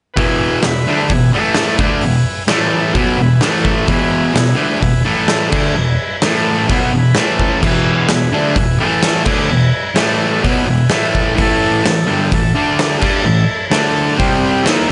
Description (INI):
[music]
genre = garage rock duo or trio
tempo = 128 BPM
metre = 4/4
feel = straight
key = E major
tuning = A4 = 440 Hz
[part]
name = combo organ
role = sustained chords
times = 0.1-14.9 s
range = E4 to B5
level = -24 LUFS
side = equal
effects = none
[part]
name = fuzz guitar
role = riff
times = 0.2-14.9 s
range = E2 to G4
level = -16 LUFS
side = equal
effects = distortion
[part]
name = oversized low-tuned drum kit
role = drums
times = 0.2-14.8 s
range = crash cymbal, hi-hat, kick drum, snare drum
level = -20 LUFS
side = equal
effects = none
[part]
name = group handclap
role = percussion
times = 0.6-14.8 s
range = none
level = -28 LUFS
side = equal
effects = none
[sound]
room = light reverb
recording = nothing above 10.6 kHz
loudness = -14 LUFS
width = mono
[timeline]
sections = 0.2-14.9 A section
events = transistor combo organ fill 3.0-3.9, 6.7-7.6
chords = 0.2 E; 1.3 A5; 1.8 E; 2.5 A5; 3.0 E; 3.4 A5; 3.9 E; 5.1 A5; 5.5 E; 6.2 A5; 6.7 E; 7.2 A5; 7.6 E; 8.8 A5; 9.3 E; 10.0 A5; 10.4 E; 10.9 A5; 12.6 D5; 13.0 A5; 13.7 D5; 14.2 C5